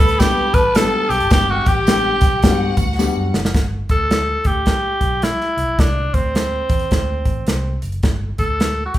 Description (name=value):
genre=uptempo 1960s-style soul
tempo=107 BPM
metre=4/4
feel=swing 62% on 8ths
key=G major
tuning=A4 = 440 Hz
part: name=raspy tenor saxophone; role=melody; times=0.0-9.0 s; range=C4 to B4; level=-19 LUFS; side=equal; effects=none
part: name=warm studio string section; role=second line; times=0.0-3.5 s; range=F#4 to B5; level=-25 LUFS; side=right 1 dB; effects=none
part: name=dark upright piano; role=accompaniment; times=0.0-3.4 s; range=G3 to G4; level=-23 LUFS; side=left 5 dB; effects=none
part: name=vintage muted fingered electric bass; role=bass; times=0.0-9.0 s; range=F#1 to G2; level=-24 LUFS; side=equal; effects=none
part: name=natural country drum kit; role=drums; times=0.1-9.0 s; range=hi-hat, kick drum, snare drum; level=-17 LUFS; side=equal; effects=none
part: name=tambourine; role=percussion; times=0.2-3.4 s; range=none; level=-36 LUFS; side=right 5 dB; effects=none
room=moderate large studio reverb, RT60 0.9 s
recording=band playing live in one room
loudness=-15 LUFS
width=side -14 dB against mid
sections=0.0-3.5 A section; 3.5-9.0 B section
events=drum fill 3.0-3.5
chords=0.0 Gmaj7; 3.5 G; 5.5 C; 6.9 D; 8.0 G5